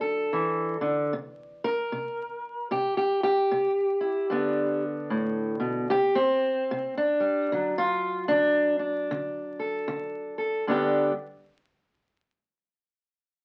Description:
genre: acoustic country blues, solo or duo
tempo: 75 BPM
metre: 4/4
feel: swing 61% on 8ths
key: G major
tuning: A4 = 441 Hz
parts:
  - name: fingerpicked steel-string acoustic guitar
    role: solo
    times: 0.0-11.1 s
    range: G2 to Bb4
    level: -27 LUFS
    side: equal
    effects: none
room: wet club reverb, RT60 0.6 s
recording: very old 78 rpm record, vinyl crackle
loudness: -27 LUFS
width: mono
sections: 0.0-10.7 A section; 10.7-13.4 B section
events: steel-string acoustic guitar solo 0.0-10.7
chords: 0.0 D; 1.1 C5; 4.3 G; 5.9 C5; 7.5 D; 10.7 G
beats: 0.32 | 1.11 1.91 2.71 3.50 | 4.30 5.09 5.89 6.69 | 7.48 8.28 9.07 9.87 | 10.66

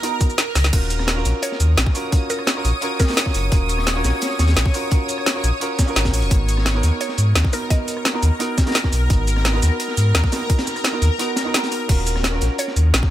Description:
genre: liquid drum and bass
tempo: 172 BPM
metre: 4/4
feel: straight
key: Eb minor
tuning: A4 = 440 Hz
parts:
  - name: dark baby grand piano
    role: accompaniment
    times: 0.0-13.1 s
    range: Cb4 to Bb4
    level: -26 LUFS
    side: right 2 dB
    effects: dub echo
  - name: shimmering ambient pad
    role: sustained chords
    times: 0.0-13.1 s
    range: Bb4 to Eb6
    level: -27 LUFS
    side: left 1 dB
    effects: chorus, built-in reverb, phaser, sidechain pumping
  - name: crunchy breakbeat drum kit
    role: drums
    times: 0.0-13.1 s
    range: hi-hat, snare drum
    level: -28 LUFS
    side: equal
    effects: high-pass filter on hats, high-pass filter on snare, high-pass filter on room
  - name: drum and bass drum kit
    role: drums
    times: 0.0-13.0 s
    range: crash cymbal, hi-hat, rim click, shaker, snare drum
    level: -22 LUFS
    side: equal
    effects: overdrive
  - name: electronic kick drum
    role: drums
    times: 0.2-13.1 s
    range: none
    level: -18 LUFS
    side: equal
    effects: none
  - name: sub bass with octave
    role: bass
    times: 0.6-13.0 s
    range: Eb1 to Ab2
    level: -18 LUFS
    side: equal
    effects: none
  - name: mallet-like synth pluck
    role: melody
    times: 1.4-3.5, 7.0-8.1, 12.6-12.8 s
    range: Bb4 to Eb5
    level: -31 LUFS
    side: right 1 dB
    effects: chorus, dub echo
room: little or no reverb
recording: none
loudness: -16 LUFS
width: side -13 dB against mid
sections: 0.7-13.1 A section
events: kick drops out 0.4-0.7, 11.2-11.9; drum fill 0.6; drop 0.7-13.1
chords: 0.0 Abm9 (rootless); 0.7 Ebm7; 6.3 Abm9; 11.9 Ebm7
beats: 0.03 0.38 | 0.73 1.08 1.43 1.78 | 2.12 2.47 2.82 3.17 | 3.52 3.87 4.22 4.57 | 4.92 5.26 5.61 5.96 | 6.31 6.66 7.01 7.36 | 7.71 8.05 8.40 8.75 | 9.10 9.45 9.80 10.15 | 10.50 10.85 11.19 11.54 | 11.89 12.24 12.59 12.94

